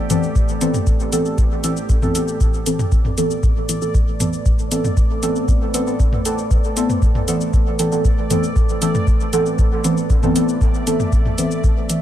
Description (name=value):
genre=dub techno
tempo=117 BPM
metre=4/4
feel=straight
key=A minor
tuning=A4 = 440 Hz
part: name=dark analog pad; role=sustained chords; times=0.0-12.0 s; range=A3 to E5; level=-28 LUFS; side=right 2 dB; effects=chorus, sidechain pumping
part: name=bubbling stepped-filter texture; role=texture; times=0.0-12.0 s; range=G4 to D5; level=-32 LUFS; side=equal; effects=chorus, built-in reverb, sidechain pumping
part: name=deep mellow chord stab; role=stabs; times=0.1-12.0 s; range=E3 to A4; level=-20 LUFS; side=equal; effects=chorus, phaser, sidechain pumping, dub echo
part: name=electronic hi-hat and shaker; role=drums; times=0.1-12.0 s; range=none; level=-27 LUFS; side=left 2 dB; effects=none
part: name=electronic toms and congas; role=percussion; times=0.1-11.4 s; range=none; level=-27 LUFS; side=equal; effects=sidechain pumping on toms, sidechain pumping on perc, dub echo
part: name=electronic kick drum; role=drums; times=0.4-11.7 s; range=none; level=-17 LUFS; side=equal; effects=none
room=light reverb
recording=none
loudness=-15 LUFS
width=side -12 dB against mid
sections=0.0-12.0 A section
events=none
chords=0.0 Amadd9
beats=| 0.36 0.87 1.38 1.90 | 2.41 2.92 3.43 3.95 | 4.46 4.97 5.49 6.00 | 6.51 7.02 7.54 8.05 | 8.56 9.07 9.59 10.10 | 10.61 11.13 11.64